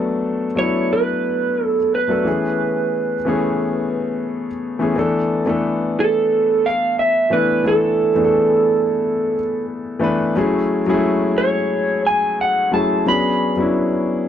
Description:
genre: soul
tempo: 89 BPM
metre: 4/4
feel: swing 54% on 16ths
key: unclear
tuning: A4 = 439 Hz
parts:
  - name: warm concert grand piano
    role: accompaniment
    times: 0.0-14.3 s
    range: E3 to B4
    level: -19 LUFS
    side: left 2 dB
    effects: none
  - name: electric guitar through a small old amp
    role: melody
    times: 0.6-14.3 s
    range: A4 to B5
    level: -18 LUFS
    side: right 3 dB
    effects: wide subtle chorus
room: moderate booth ambience, RT60 0.2 s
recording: dry, close 1970s-style studio recording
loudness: -16 LUFS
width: side -10 dB against mid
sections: 0.0-5.0 A section; 5.0-14.3 B section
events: none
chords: 0.0 Bm7; 2.3 Amaj9; 5.0 E7sus4; 10.4 F#m9; 13.1 Bm69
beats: 0.24 0.91 1.59 | 2.26 2.94 3.61 4.29 | 4.96 5.63 6.31 6.98 | 7.66 8.33 9.01 9.68 | 10.36 11.03 11.71 12.38 | 13.06 13.73

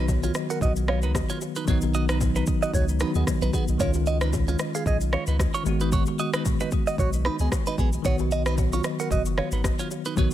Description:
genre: afrobeats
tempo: 113 BPM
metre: 4/4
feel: swing 55% on 16ths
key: unclear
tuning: A4 = 441 Hz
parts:
  - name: bell-like tine electric piano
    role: accompaniment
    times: 0.0-10.3 s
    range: D#3 to F#4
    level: -28 LUFS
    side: left 1 dB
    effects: fast stereo tremolo
  - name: direct-recorded clean electric guitar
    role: riff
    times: 0.0-10.3 s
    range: B3 to F#5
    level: -30 LUFS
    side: right 4 dB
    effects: phaser, ping-pong delay
  - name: punchy sub bass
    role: bass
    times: 0.0-10.3 s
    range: F#1 to D#2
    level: -25 LUFS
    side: equal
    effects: none
  - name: afro-pop drum kit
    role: drums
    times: 0.1-10.3 s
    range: kick drum, rim click, shaker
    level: -27 LUFS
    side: equal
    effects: none
  - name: bongos and congas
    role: percussion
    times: 0.1-10.3 s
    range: none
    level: -35 LUFS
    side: left 2 dB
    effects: none
room: digital ambience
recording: none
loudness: -22 LUFS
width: side -12 dB against mid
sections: 0.0-10.3 A section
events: none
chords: 0.0 B; 3.8 C#add9; 5.7 G#m7; 8.0 B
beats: 0.08 0.61 1.15 | 1.68 2.21 2.74 3.27 | 3.80 4.33 4.86 5.39 | 5.92 6.46 6.99 7.52 | 8.05 8.58 9.11 9.64 | 10.17

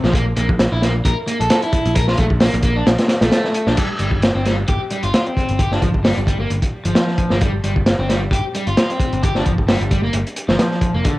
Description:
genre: breakbeat, breaks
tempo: 132 BPM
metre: 4/4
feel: swing 55% on 16ths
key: G dorian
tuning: A4 = 440 Hz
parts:
  - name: overdriven semi-hollow guitar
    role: riff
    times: 0.0-11.1 s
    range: D3 to Bb4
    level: -21 LUFS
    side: equal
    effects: cassette tape, analog delay
  - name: modern bright picked electric bass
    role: bass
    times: 0.0-11.0 s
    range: F1 to Bb1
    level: -20 LUFS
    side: equal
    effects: none
  - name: crunchy breakbeat drum kit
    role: drums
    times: 0.0-11.2 s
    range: crash cymbal, hi-hat, kick drum, snare drum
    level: -17 LUFS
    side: equal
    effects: cassette tape
room: light reverb, studio reverb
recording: home recording on cassette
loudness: -15 LUFS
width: side -18 dB against mid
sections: 0.0-3.8 A section; 3.8-11.2 B section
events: drop 0.0-3.8; kick drops out 2.9-3.8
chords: 0.1 N.C.; 3.8 G7(no3)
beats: | 0.14 0.59 1.05 1.50 | 1.96 2.41 2.87 3.32 | 3.77 4.23 4.68 5.14 | 5.59 6.05 6.50 6.96 | 7.41 7.87 8.32 8.77 | 9.23 9.68 10.14 10.59 | 11.05

